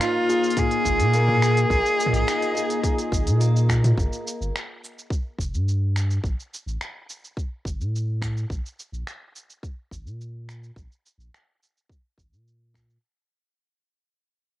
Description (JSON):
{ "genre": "folktronica", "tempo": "106 BPM", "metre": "4/4", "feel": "straight", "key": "unclear", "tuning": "A4 = 442 Hz", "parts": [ { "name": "clear cello", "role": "melody", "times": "0.0-3.4 s", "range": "F4 to Ab4", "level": "-22 LUFS", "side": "equal", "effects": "cassette tape, tape echo" }, { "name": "warbly tape-like pad", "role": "sustained chords", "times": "0.0-4.0 s", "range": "Bb3 to Eb5", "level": "-28 LUFS", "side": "left 2 dB", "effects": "chorus, built-in reverb" }, { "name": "picked swing-style acoustic guitar", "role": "arpeggios", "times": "0.0-4.5 s", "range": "Bb2 to Ab4", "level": "-32 LUFS", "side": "equal", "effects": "none" }, { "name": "organic electronic drum kit", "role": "drums", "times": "0.0-13.0 s", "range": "cabasa, finger snaps, hi-hat, toms", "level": "-30 LUFS", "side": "equal", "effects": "cassette tape" }, { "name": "electronic kick drum", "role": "drums", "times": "0.6-12.9 s", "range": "none", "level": "-27 LUFS", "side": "equal", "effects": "cassette tape" }, { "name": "warm sub bass", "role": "bass", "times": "0.9-13.0 s", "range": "F1 to Bb2", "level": "-23 LUFS", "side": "equal", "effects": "none" } ], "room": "light reverb", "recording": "home recording on cassette", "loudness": "-21 LUFS", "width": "side -14 dB against mid", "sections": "0.0-4.0 A section; 4.0-13.0 B section", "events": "fade-out 4.0-13.0", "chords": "0.0 Bb7sus4; 4.0 N.C.", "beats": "0.01 0.57 1.14 | 1.71 2.27 2.84 3.40 | 3.97 4.54 5.10 5.67 | 6.23 6.80 7.37 7.93 | 8.50 9.06 9.63 10.20 | 10.76 11.33 11.89 12.46" }